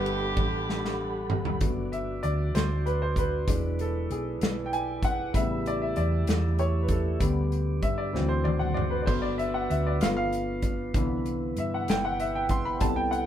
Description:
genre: slow gospel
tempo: 64 BPM (dotted quarters)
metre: 6/8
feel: straight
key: G major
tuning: A4 = 440 Hz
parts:
  - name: warm horn section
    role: melody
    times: 0.0-1.3 s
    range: B3 to G4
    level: -33 LUFS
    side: right 2 dB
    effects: none
  - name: clear grand piano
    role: accompaniment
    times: 0.0-13.3 s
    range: G2 to C6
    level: -30 LUFS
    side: left 2 dB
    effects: none
  - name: mellow tonewheel organ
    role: sustained chords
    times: 0.0-13.3 s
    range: B2 to B5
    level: -34 LUFS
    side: right 2 dB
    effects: slow rotary speaker
  - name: hollow-body short-scale fingered electric bass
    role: bass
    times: 0.0-13.3 s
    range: E1 to G2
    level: -30 LUFS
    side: equal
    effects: none
  - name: natural country drum kit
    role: drums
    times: 0.1-13.3 s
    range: crash cymbal, hi-hat, kick drum, ride cymbal, snare drum, toms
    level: -29 LUFS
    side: equal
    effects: none
room: light reverb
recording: band playing live in one room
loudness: -25 LUFS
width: side -10 dB against mid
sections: 0.0-1.6 A section; 1.6-13.3 B section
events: drum fill 0.7-1.6, 8.1-9.1; grand piano solo 1.6-13.3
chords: 0.0 Gmaj9; 3.5 E7; 5.3 A7; 7.2 G/D; 8.1 D7; 9.1 Gmaj7; 10.0 G7; 10.9 Cmaj7

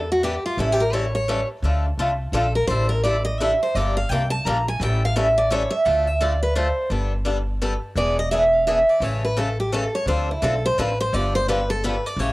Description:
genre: acoustic string swing (jazz manouche)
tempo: 171 BPM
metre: 3/4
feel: swing 61% on 8ths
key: D dorian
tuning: A4 = 438 Hz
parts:
  - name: picked steel-string acoustic guitar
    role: melody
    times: 0.0-12.3 s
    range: E4 to Bb5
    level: -21 LUFS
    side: right 1 dB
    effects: cassette tape
  - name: upright bass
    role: bass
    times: 0.0-12.3 s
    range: E1 to E2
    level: -24 LUFS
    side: equal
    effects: none
  - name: picked swing-style acoustic guitar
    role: accompaniment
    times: 0.2-12.3 s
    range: C#3 to A4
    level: -26 LUFS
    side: left 2 dB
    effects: cassette tape
room: light reverb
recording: home recording on cassette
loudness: -19 LUFS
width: side -20 dB against mid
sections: 0.0-5.9 A section; 5.9-12.3 A section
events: steel-string acoustic guitar solo 0.0-12.3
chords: 0.0 Em7; 0.6 A7; 1.6 Dm; 2.7 A7sus4; 3.7 Gm; 4.8 A7; 5.9 Dm; 6.9 Gadd9; 8.0 E7; 9.0 A; 10.1 Dm7; 11.1 G7

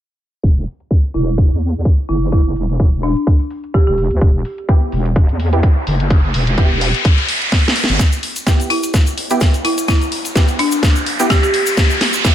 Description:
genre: bass house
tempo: 127 BPM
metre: 4/4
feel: swing 56% on 16ths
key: E minor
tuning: A4 = 440 Hz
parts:
  - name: wobble bass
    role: bass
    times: 0.4-8.0 s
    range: E1 to E2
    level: -17 LUFS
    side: equal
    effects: chorus, overdrive, sidechain pumping
  - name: electronic kick drum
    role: drums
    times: 0.4-12.3 s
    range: none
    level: -12 LUFS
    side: equal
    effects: studio reverb
  - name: garage drum kit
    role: drums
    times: 0.4-12.3 s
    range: hi-hat, snare drum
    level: -20 LUFS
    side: equal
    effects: studio reverb
  - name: folk marimba with hard mallets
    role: melody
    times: 1.1-3.9, 8.7-11.5 s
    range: D4 to G4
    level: -20 LUFS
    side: equal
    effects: vintage 12-bit sampler grit, ping-pong delay
  - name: riser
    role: sound effects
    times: 5.0-12.3 s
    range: none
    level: -21 LUFS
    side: equal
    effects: none
  - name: orchestra-hit-like synth stab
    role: stabs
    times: 4.7-12.3 s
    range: B3 to G4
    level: -22 LUFS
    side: right 2 dB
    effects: built-in reverb, sidechain pumping, ping-pong delay
  - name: tube shaker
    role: percussion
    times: 8.0-12.3 s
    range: none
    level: -27 LUFS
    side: left 3 dB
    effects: none
room: light reverb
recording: low-pass filter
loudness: -13 LUFS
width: side -11 dB against mid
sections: 0.4-8.0 A section; 8.0-12.3 B section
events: filter sweep 0.4-8.0; riser 5.0-8.0, 8.0-12.3; drum fill 7.5-8.0, 8.0-12.3; build-up 8.0-12.3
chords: 0.4 Em

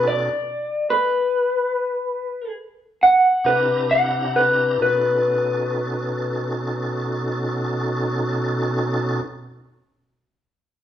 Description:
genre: blues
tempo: 43-49 BPM (dotted quarters)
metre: 12/8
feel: straight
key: B mixolydian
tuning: A4 = 440 Hz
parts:
  - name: electric guitar through a small old amp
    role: melody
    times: 0.0-9.2 s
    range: B4 to F#5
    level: -18 LUFS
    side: left 1 dB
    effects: phaser
  - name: tonewheel organ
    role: sustained chords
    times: 0.0-9.2 s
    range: B2 to Bb5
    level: -24 LUFS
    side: right 1 dB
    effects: slow rotary speaker, overdrive, chorus vibrato
room: wet large studio reverb, RT60 1.1 s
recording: band playing live in one room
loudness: -19 LUFS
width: side -10 dB against mid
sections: 0.0-4.8 A section; 4.8-10.3 B section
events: slowing down 0.0-4.8; clean electric guitar solo 0.0-4.8; stop 0.0-3.4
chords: 0.0 B9; 3.4 C9; 4.8 B9

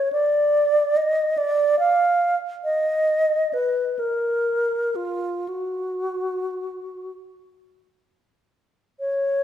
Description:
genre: classical, free, expressive piece for unaccompanied alto flute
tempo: 26-48 BPM (dotted quarters)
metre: 6/8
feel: rubato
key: Eb minor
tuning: A4 = 440 Hz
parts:
  - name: alto flute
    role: solo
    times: 0.0-9.4 s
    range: F4 to F5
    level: -20 LUFS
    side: right 1 dB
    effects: none
room: moderate scoring stage reverb, RT60 1.5 s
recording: minimal, uncompressed stereo recording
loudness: -20 LUFS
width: side -10 dB against mid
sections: 0.0-9.0 A section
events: none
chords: none

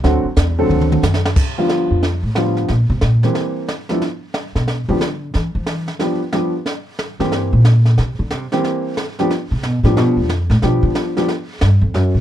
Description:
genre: jazz, small-group swing and bop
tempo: 181 BPM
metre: 4/4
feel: swing 64% on 8ths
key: G mixolydian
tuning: A4 = 438 Hz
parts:
  - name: warm upright piano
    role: accompaniment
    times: 0.0-11.3 s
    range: D3 to A4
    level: -18 LUFS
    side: equal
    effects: none
  - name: upright bass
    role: bass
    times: 0.0-12.2 s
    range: D2 to F3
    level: -15 LUFS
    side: equal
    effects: none
  - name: jazz brush drum kit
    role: drums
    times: 0.0-12.2 s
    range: brushed snare drum, crash cymbal, hi-hat, kick drum, snare drum, toms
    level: -22 LUFS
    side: right 1 dB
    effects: none
room: little or no reverb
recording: dark, warm production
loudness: -15 LUFS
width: side -11 dB against mid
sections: 0.0-1.4 A section; 1.4-12.2 A section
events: drum fill 0.7-1.4; upright bass solo 1.4-12.2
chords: 0.0 D7; 1.4 G7; 2.7 C7; 4.0 G7; 6.7 C7; 9.3 G7

